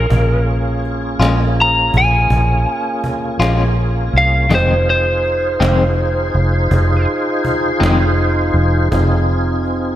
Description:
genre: slow blues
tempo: 54 BPM (dotted quarters)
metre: 12/8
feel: straight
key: F minor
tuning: A4 = 438 Hz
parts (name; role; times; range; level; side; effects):
- lightly driven lead guitar; melody; 0.0-7.1 s; Bb4 to Bb5; -17 LUFS; equal; slapback echo
- tonewheel organ; sustained chords; 0.0-10.0 s; Bb3 to C5; -20 LUFS; equal; overdrive, chorus vibrato, slow rotary speaker
- vintage muted fingered electric bass; bass; 0.0-10.0 s; F1 to C2; -16 LUFS; equal; none
- cajon; drums; 0.1-9.7 s; none; -25 LUFS; right 1 dB; slapback echo
- clean electric guitar; accompaniment; 1.2-8.0 s; F2 to F4; -20 LUFS; left 4 dB; tremolo
room: moderate lush hall reverb, RT60 3.0 s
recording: big arena sound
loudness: -13 LUFS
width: side -12 dB against mid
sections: 0.0-10.0 A section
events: lead electric guitar solo 0.0-10.0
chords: 0.0 Bbm7; 4.5 Fm7

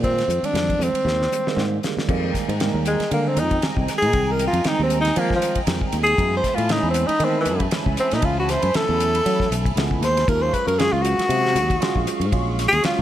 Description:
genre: electric jazz fusion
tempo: 117 BPM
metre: 4/4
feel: swing 56% on 16ths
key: unclear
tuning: A4 = 440 Hz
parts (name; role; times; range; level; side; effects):
- breathy tenor saxophone; melody; 0.0-13.0 s; Fb3 to C5; -21 LUFS; equal; tape echo
- bright tine electric piano; accompaniment; 0.0-13.0 s; Eb3 to Gb4; -28 LUFS; right 10 dB; phaser
- sustaining fretless electric bass; bass; 0.0-13.0 s; Bb1 to Gb3; -23 LUFS; left 1 dB; lush chorus
- damped 70s drum kit; drums; 0.0-13.0 s; crash cymbal, hi-hat, kick drum, ride cymbal, snare drum; -26 LUFS; left 1 dB; none
- hollow soft pad; sustained chords; 2.1-13.0 s; Ab4 to Db6; -31 LUFS; left 1 dB; ensemble chorus
room: light reverb, small room reverb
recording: none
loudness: -18 LUFS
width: side -12 dB against mid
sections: 0.0-2.1 A section; 2.1-13.0 B section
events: drum fill 1.1-2.1; tenor saxophone solo 2.1-13.0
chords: 0.0 Fm11; 6.2 Gbm11; 10.3 Ebm11

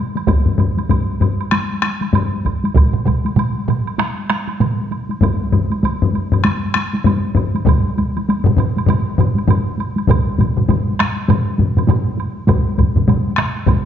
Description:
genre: japanese traditional, taiko drum ensemble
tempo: 98 BPM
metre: 4/4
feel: swing 60% on 16ths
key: none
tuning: none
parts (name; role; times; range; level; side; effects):
- taiko ensemble; percussion; 0.2-13.8 s; none; -20 LUFS; left 1 dB; none
- woodblock; percussion; 0.2-13.8 s; none; -29 LUFS; right 8 dB; none
- solo taiko drums; percussion; 0.3-13.8 s; none; -18 LUFS; left 3 dB; none
- taiko ensemble; percussion; 0.3-13.8 s; none; -19 LUFS; right 1 dB; none
- taiko ensemble; percussion; 2.8-13.8 s; none; -19 LUFS; right 4 dB; none
room: wet recital hall reverb, RT60 1.5 s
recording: dark, warm production, nothing above 7.8 kHz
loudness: -14 LUFS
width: side -9 dB against mid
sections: 0.3-10.1 A section; 10.1-13.9 B section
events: speeding up 0.0-13.9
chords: none

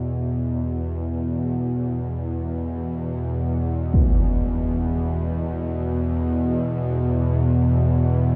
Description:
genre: dark ambient drone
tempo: free time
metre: none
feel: none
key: unclear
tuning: A4 = 440 Hz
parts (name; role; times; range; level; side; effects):
- bowed-like drone; drone; 0.0-8.4 s; E2 to B2; -24 LUFS; equal; built-in reverb
- impact; percussion; 3.9-4.2 s; none; -24 LUFS; equal; low-pass filter on sfx
room: wet huge ambient reverb, RT60 8.8 s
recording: dark, warm production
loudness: -23 LUFS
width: mono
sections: 0.0-8.4 A section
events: filter sweep on synth drone 0.0-8.4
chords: 0.0 E5

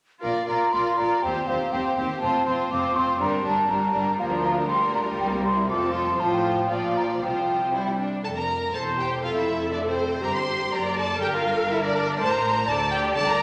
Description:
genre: quick classical-period movement for symphony orchestra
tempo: 121 BPM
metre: 2/4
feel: straight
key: Bb major, F major from 4.2 s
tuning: A4 = 439 Hz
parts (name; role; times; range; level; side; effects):
- rich chamber violin section; melody; 0.2-13.4 s; A4 to C6; -32 LUFS; equal; none
- mellow hollow concert flute; second line; 0.2-8.0 s; F5 to D6; -27 LUFS; equal; none
- rich chamber violin section; second line; 0.2-13.4 s; G3 to C5; -33 LUFS; equal; none
- rich chamber viola section; accompaniment; 0.2-13.4 s; F3 to D5; -29 LUFS; equal; none
- rich chamber double bass section; bass; 0.2-13.4 s; E1 to Eb2; -39 LUFS; equal; none
- rich studio cello section; bass; 0.2-13.4 s; C2 to D3; -38 LUFS; equal; none
room: wet scoring stage reverb, RT60 2.0 s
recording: none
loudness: -24 LUFS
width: mono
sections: 0.2-8.2 A section; 8.2-13.4 B section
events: none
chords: 0.2 Bb; 1.2 Cm/Eb; 2.2 F5; 3.2 Gm; 4.2 Bb/D; 4.7 Gm7/D; 5.2 C7; 5.7 F; 6.2 F/A; 6.7 Bb; 7.2 Csus4; 7.7 C; 8.2 Fsus4; 8.7 C/E; 9.2 F; 10.2 Gmadd11; 10.7 D/F#; 11.2 Gm; 12.2 Am; 12.7 D5

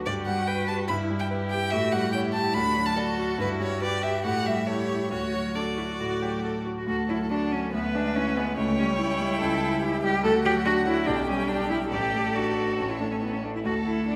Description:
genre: quick classical-period movement for piano quartet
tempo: 142 BPM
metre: 4/4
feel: rubato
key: D major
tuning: A4 = 442 Hz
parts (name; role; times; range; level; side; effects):
- clear cello; second line; 0.0-14.2 s; A3 to B4; -31 LUFS; equal; none
- clear concert grand piano; accompaniment; 0.0-14.2 s; A1 to D5; -30 LUFS; equal; none
- clear viola; accompaniment; 0.0-14.2 s; E4 to C#5; -36 LUFS; equal; none
- clear violin; melody; 0.1-14.2 s; A4 to B5; -34 LUFS; equal; none
room: wet scoring stage reverb, RT60 2.0 s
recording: none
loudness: -26 LUFS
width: mono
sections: 0.0-6.9 A section; 6.9-14.2 B section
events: none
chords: 0.1 G; 0.9 Em/G; 1.7 A7; 2.6 D; 3.4 Em/G; 4.2 A7; 5.1 D; 7.7 E7/D; 8.6 A7/C#; 10.2 D; 11.1 G/B; 11.9 D/A; 12.8 A; 13.6 D5

